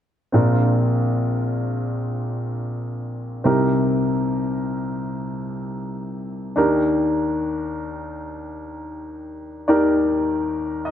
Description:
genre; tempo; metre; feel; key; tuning
pop; 77 BPM; 4/4; straight; Bb major; A4 = 441 Hz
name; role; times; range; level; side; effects
warm upright piano; accompaniment; 0.3-10.9 s; Bb1 to Eb5; -20 LUFS; equal; none
room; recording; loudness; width
light reverb; none; -20 LUFS; side -10 dB against mid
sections
0.3-10.9 A section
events
upright piano fill 10.5-10.9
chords
0.3 Bbadd9; 3.5 Cm7; 6.6 Ebmaj7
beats
| 0.34 1.12 1.90 2.68 | 3.46 4.24 5.02 5.80 | 6.58 7.36 8.14 8.91 | 9.69 10.47

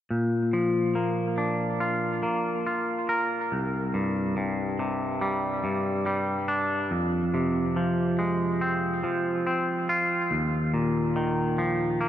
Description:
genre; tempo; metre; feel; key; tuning
rock; 71 BPM; 4/4; straight; unclear; A4 = 438 Hz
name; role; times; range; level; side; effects
twangy electric guitar; arpeggios; 0.1-12.1 s; C2 to Bb4; -24 LUFS; equal; spring reverb, analog delay
room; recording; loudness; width
moderate huge ambient reverb, RT60 4.7 s; none; -24 LUFS; side -11 dB against mid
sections
0.1-12.1 A section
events
none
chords
0.1 Bb; 3.5 Csus2; 6.9 Fm; 10.3 Ebsus2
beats
| 0.11 0.96 1.81 2.66 | 3.51 4.36 5.21 6.06 | 6.91 7.76 8.61 9.46 | 10.31 11.16 12.01

